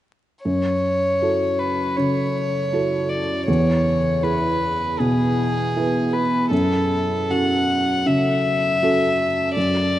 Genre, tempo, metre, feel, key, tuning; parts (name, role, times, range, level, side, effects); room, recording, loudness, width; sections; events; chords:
neoclassical piano and strings; 79 BPM; 4/4; rubato; F# minor; A4 = 440 Hz
deep dark ambient pad; sustained chords; 1.6-10.0 s; C#3 to A4; -30 LUFS; right 1 dB; chorus, built-in reverb
rich violin; melody; 0.5-10.0 s; G#4 to F#5; -22 LUFS; left 2 dB
felt-muted upright piano; accompaniment; 0.5-10.0 s; E2 to B4; -21 LUFS; right 1 dB
moderate lush hall reverb, RT60 3.1 s; rough home demo mix, vinyl crackle, nothing above 11.0 kHz; -18 LUFS; side -13 dB against mid
0.4-10.0 A section
0.4 F#m7; 3.5 E6; 6.5 F#m7